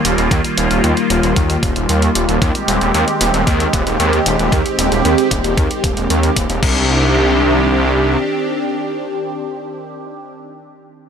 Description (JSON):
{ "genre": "synthwave", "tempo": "114 BPM", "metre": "4/4", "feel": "straight", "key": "C minor", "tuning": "A4 = 440 Hz", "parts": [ { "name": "lush unison pad", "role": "sustained chords", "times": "0.0-10.3 s", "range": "Eb3 to G4", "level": "-17 LUFS", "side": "right 1 dB", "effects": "chorus, phaser, sidechain pumping" }, { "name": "wide detuned saw bass", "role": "bass", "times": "0.0-8.2 s", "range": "Eb1 to Eb2", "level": "-16 LUFS", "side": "equal", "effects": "chorus, sidechain pumping" }, { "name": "detuned 8-bit digital drum machine", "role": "drums", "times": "0.0-6.7 s", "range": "crash cymbal, hi-hat", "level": "-22 LUFS", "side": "left 1 dB", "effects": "none" }, { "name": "electronic kick drum", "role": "drums", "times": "0.3-6.7 s", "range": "none", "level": "-19 LUFS", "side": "equal", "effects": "none" } ], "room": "light reverb, digital ambience", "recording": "none", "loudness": "-13 LUFS", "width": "side -7 dB against mid", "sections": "0.0-6.6 A section; 6.6-10.8 B section", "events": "none", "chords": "0.0 Ebadd9; 2.4 Abmaj7/Eb; 6.6 Cmadd9" }